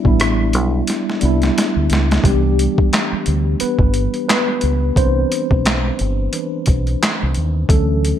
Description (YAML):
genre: R&B, neo-soul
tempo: 88 BPM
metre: 4/4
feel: swing 57% on 16ths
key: C major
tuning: A4 = 440 Hz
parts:
  - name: mellow tine electric piano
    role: accompaniment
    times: 0.0-8.2 s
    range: E3 to C5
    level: -19 LUFS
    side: equal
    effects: medium stereo tremolo
  - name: deep dub fingered electric bass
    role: bass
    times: 0.1-8.1 s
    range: G1 to Eb2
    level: -18 LUFS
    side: equal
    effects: none
  - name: boom bap sampler-style drum kit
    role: drums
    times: 0.1-8.2 s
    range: handclaps, hi-hat, kick drum, rim click, snare drum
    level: -18 LUFS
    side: equal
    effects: overdrive, gated reverb
room: light reverb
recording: bright 1980s-style digital production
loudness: -14 LUFS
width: side -10 dB against mid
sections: 0.0-2.2 A section; 2.2-8.2 A section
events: drum fill 0.9-2.2; tine electric piano solo 2.2-8.2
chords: 0.0 Cmaj9 (rootless); 2.2 Cmaj9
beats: 0.19 0.88 1.56 | 2.24 2.92 3.60 4.28 | 4.96 5.65 6.33 7.01 | 7.69